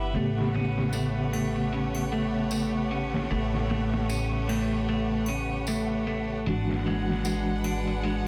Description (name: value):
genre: trip hop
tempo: 76 BPM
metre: 4/4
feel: swing 57% on 16ths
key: unclear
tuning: A4 = 440 Hz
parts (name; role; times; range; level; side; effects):
- mellow tine electric piano; accompaniment; 0.0-8.3 s; C#3 to G4; -33 LUFS; equal; tremolo, tape echo
- clear studio violin section; sustained chords; 0.0-8.3 s; G3 to F#5; -38 LUFS; equal; none
- clean electric guitar; arpeggios; 0.0-8.3 s; G#3 to E4; -33 LUFS; equal; low-pass filter, tape echo
- upright bass; bass; 0.0-8.3 s; G1 to A1; -34 LUFS; equal; tube saturation
- flickering grainy texture; texture; 0.0-8.3 s; F#5; -43 LUFS; equal; built-in reverb
- trip hop sampler-style drum kit; drums; 0.1-8.3 s; hi-hat, snare drum; -39 LUFS; equal; overdrive, low-pass filter on hats, studio reverb, low-pass filter on snare
- tambourine and triangle; percussion; 0.9-7.8 s; none; -44 LUFS; equal; none
room: light reverb, small room reverb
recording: dense, heavily limited modern master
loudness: -28 LUFS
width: mono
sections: 0.0-8.3 A section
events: none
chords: 0.2 A9; 6.5 E9/G#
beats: | 0.15 0.94 1.73 2.52 | 3.31 4.10 4.89 5.68 | 6.47 7.26 8.05